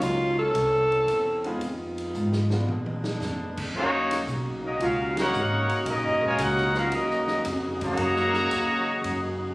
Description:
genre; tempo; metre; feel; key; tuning
jazz, big band swing; 113 BPM; 4/4; swing 69% on 8ths; Eb minor; A4 = 441 Hz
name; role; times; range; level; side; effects
warm tenor saxophone; melody; 0.0-1.6 s; F4 to A4; -22 LUFS; equal; none
warm saxophone section; sustained chords; 0.0-9.5 s; Db3 to Gb4; -33 LUFS; equal; none
upright bass; bass; 0.0-9.5 s; Eb1 to Bb2; -31 LUFS; equal; none
swinging big-band drum kit; drums; 0.0-9.2 s; crash cymbal, hi-hat, kick drum, ride cymbal, snare drum, toms; -36 LUFS; equal; none
bright concert grand piano; accompaniment; 1.5-2.7 s; Ab3 to Bb4; -32 LUFS; equal; none
mellow trombone section; second line; 3.7-9.4 s; Db3 to Gb4; -29 LUFS; right 1 dB; none
warm trumpet section; melody; 3.8-9.4 s; Bb3 to Bb5; -25 LUFS; equal; none
room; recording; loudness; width
moderate large studio reverb, RT60 0.9 s; recorded on a phone in the room, studio reverb, compression; -23 LUFS; side -21 dB against mid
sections
0.0-3.7 A section; 3.7-9.5 B section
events
tenor saxophone solo 0.0-3.7; drum fill 2.1-3.2; band accent 5.1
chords
0.0 Ebm7; 0.5 C7b9; 1.6 Fm7b5; 2.7 Bb7b9; 3.7 Ebm7

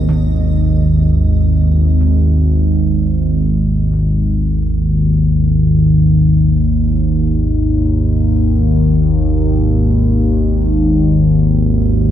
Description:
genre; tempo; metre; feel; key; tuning
ambient; free time; none; none; unclear; A4 = 438 Hz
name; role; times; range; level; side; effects
analog drone; drone; 0.0-12.1 s; G#1 to D#2; -11 LUFS; equal; chorus
gamelan-type bossed gongs; arpeggios; 0.1-7.8 s; D#3; -22 LUFS; right 4 dB; tape echo
room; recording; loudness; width
moderate huge ambient reverb, RT60 8.6 s; none; -11 LUFS; side -11 dB against mid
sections
0.1-12.1 A section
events
none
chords
0.1 G#5

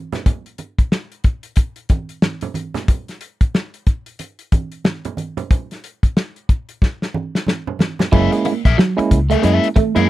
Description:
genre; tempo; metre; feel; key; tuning
funk; 92 BPM; 4/4; swing 60% on 16ths; F# mixolydian; A4 = 439 Hz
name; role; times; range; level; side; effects
warm soul drum kit; drums; 0.1-10.1 s; crash cymbal, hi-hat, kick drum, snare drum; -16 LUFS; left 1 dB; none
congas; percussion; 0.1-9.9 s; none; -27 LUFS; right 5 dB; none
overdriven electric guitar; accompaniment; 8.1-10.1 s; G#4 to E5; -20 LUFS; left 8 dB; wah
electric guitar at the edge of break-up; riff; 8.1-10.1 s; F#3 to A#3; -19 LUFS; right 6 dB; analog chorus
tine electric piano; stabs; 8.1-10.1 s; G#3 to E4; -17 LUFS; right 4 dB; none
fingered electric bass; bass; 8.1-10.1 s; F#1 to F#2; -17 LUFS; equal; none
room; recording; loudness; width
little or no reverb; none; -16 LUFS; side -15 dB against mid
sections
0.0-8.1 A section; 8.1-10.1 B section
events
drum fill 6.8-8.1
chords
0.0 N.C.; 8.1 F#9

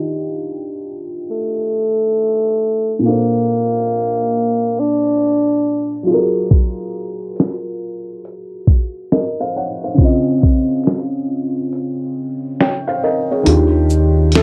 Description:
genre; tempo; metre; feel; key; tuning
lo-fi hip hop; 69 BPM; 4/4; swing 64% on 16ths; Eb lydian; A4 = 440 Hz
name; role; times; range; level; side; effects
felt-muted upright piano; accompaniment; 0.0-14.4 s; Bb2 to G5; -21 LUFS; equal; low-pass filter
growling tenor saxophone; melody; 1.3-6.1, 14.4 s; A3 to D4; -18 LUFS; equal; low-pass filter, cassette tape
dusty soul sampler-style drum kit; drums; 6.5-14.4 s; hi-hat, kick drum, shaker, snare drum; -16 LUFS; equal; cassette tape
upright bass; bass; 13.5-14.4 s; Eb2; -15 LUFS; equal; transformer saturation
room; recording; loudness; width
light reverb; home recording on cassette, low-pass filter; -17 LUFS; mono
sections
0.0-13.5 A section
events
filter sweep 0.0-13.5; kick muted 13.5-14.4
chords
0.0 Ebmaj9; 3.0 Bbmaj9; 6.1 Gbmaj9; 10.0 Dbmaj9; 13.5 Ebmaj9

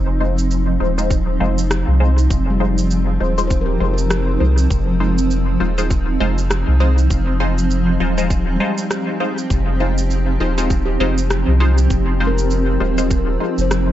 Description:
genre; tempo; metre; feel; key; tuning
ambient dub; 100 BPM; 4/4; swing 58% on 16ths; F minor; A4 = 441 Hz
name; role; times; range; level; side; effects
granular cloud pad; sustained chords; 0.0-13.9 s; F3 to G4; -21 LUFS; right 1 dB; built-in reverb
soft dub sub bass; bass; 0.0-13.9 s; Eb1 to C2; -17 LUFS; equal; none
filtered dub chord stab; stabs; 0.2-13.5 s; Ab3 to C5; -24 LUFS; left 1 dB; phaser, analog chorus, dub echo
electronic shaker and rim click; drums; 0.4-13.8 s; none; -27 LUFS; right 1 dB; dub echo
electronic kick drum; drums; 1.1-13.2 s; none; -20 LUFS; equal; none
handpan; arpeggios; 2.5-13.9 s; G3 to C5; -27 LUFS; left 2 dB; dub echo
room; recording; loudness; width
little or no reverb; dark, warm production, nothing above 7.8 kHz; -15 LUFS; side -12 dB against mid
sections
0.0-13.9 A section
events
none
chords
0.0 Fm7

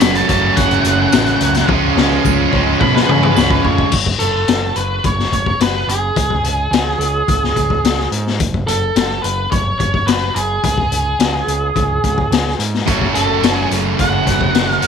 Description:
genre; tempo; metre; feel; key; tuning
classic rock; 107 BPM; 4/4; straight; F# harmonic minor; A4 = 444 Hz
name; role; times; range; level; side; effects
octave-fuzz lead guitar; melody; 0.0-14.9 s; G#4 to B5; -18 LUFS; right 1 dB; distortion, slapback echo
overdriven tonewheel organ; sustained chords; 0.0-3.9, 12.9-14.9 s; C#4 to C#5; -28 LUFS; right 3 dB; none
distorted electric guitar; riff; 0.0-3.9, 12.9-14.9 s; F#2 to C#4; -21 LUFS; left 10 dB; overdrive
distorted electric guitar; riff; 0.0-3.9, 12.9-14.9 s; F#2 to F#4; -19 LUFS; right 15 dB; overdrive
distorted electric guitar; riff; 0.0-3.9 s; F#2 to C#4; -21 LUFS; right 2 dB; distortion
growling picked electric bass; bass; 0.0-14.9 s; F#1 to C#3; -20 LUFS; right 2 dB; overdrive
raw garage drum kit; drums; 0.0-14.9 s; crash cymbal, hi-hat, kick drum, snare drum, toms; -17 LUFS; left 5 dB; none
tambourine; percussion; 0.0-3.5 s; none; -31 LUFS; left 12 dB; none
room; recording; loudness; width
studio ambience; 1960s-style stereo with parts hard left and right; -13 LUFS; side -7 dB against mid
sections
0.0-3.9 A section; 3.9-14.9 B section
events
lead electric guitar solo 0.0-3.9; drum fill 1.7-3.9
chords
0.0 F#m; 1.7 C#; 3.9 F#m; 6.2 C#5; 8.4 F#m; 10.6 C#5; 12.9 F#m

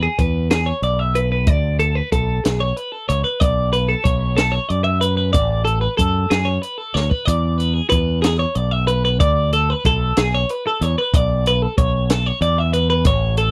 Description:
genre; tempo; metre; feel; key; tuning
math rock and midwest emo; 62 BPM (dotted quarters); 6/8; straight; unclear; A4 = 440 Hz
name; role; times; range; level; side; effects
twelve-string electric guitar; arpeggios; 0.0-13.5 s; G#4 to E5; -22 LUFS; equal; none
growling fingered electric bass; bass; 0.0-13.5 s; A1 to F#2; -22 LUFS; equal; overdrive
compact cocktail drum kit; drums; 0.2-13.5 s; hi-hat, kick drum, snare drum; -22 LUFS; equal; none
room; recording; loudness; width
little or no reverb; dry, close 1970s-style studio recording; -18 LUFS; mono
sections
0.0-13.5 A section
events
drum fill 7.0-7.3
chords
0.0 E7; 3.4 Bm9; 7.3 E7; 11.1 Bm9

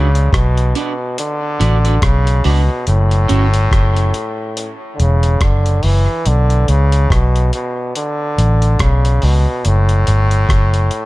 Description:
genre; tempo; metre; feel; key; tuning
dub reggae; 71 BPM; 4/4; swing 58% on 16ths; B minor; A4 = 441 Hz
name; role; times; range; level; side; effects
brilliant trombone; melody; 0.0-11.1 s; A2 to E3; -19 LUFS; equal; dub echo
electric guitar at the edge of break-up; accompaniment; 0.0-3.5 s; C#4 to D5; -26 LUFS; right 7 dB; analog chorus, dub echo
vintage muted fingered electric bass; bass; 0.0-10.9 s; E1 to C#2; -12 LUFS; equal; none
dusty soul sampler-style drum kit; drums; 0.2-11.1 s; hi-hat, kick drum, rim click; -18 LUFS; equal; none
room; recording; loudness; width
little or no reverb; none; -12 LUFS; side -19 dB against mid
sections
0.0-11.1 A section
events
none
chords
0.0 Bm; 2.9 F#m; 6.3 Bm; 9.6 F#m

